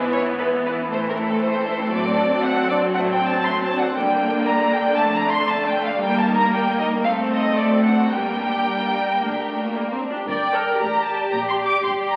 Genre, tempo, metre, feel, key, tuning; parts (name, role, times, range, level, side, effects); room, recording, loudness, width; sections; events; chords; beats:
quick classical-period movement for string orchestra; 116 BPM; 4/4; straight; G minor; A4 = 440 Hz
warm studio violin section; melody; 0.0-12.2 s; A4 to D6; -25 LUFS; equal
rich studio violin section; second line; 0.0-12.2 s; G3 to D5; -28 LUFS; equal
clear studio viola section; accompaniment; 0.0-12.2 s; D3 to D5; -25 LUFS; equal
rich studio cello section; bass; 0.0-12.2 s; C2 to Bb2; -35 LUFS; equal
rich studio double bass section; bass; 10.3-12.2 s; G1 to Bb1; -42 LUFS; equal
wet recital hall reverb, RT60 1.7 s; very old 78 rpm record, vinyl crackle; -21 LUFS; mono
0.0-10.3 A section; 10.3-12.2 B section
0.0 E/G#; 0.9 Am; 1.9 D7/A; 4.0 Gm; 5.0 Dm/F; 6.0 Eb; 7.1 Adim/C; 7.6 D7; 8.1 Gm
0.41 0.92 1.43 | 1.93 2.44 2.95 3.46 | 3.97 4.48 4.99 5.50 | 6.02 6.53 7.05 7.58 | 8.12 8.66 9.20 9.74 | 10.27 10.80 11.32 11.84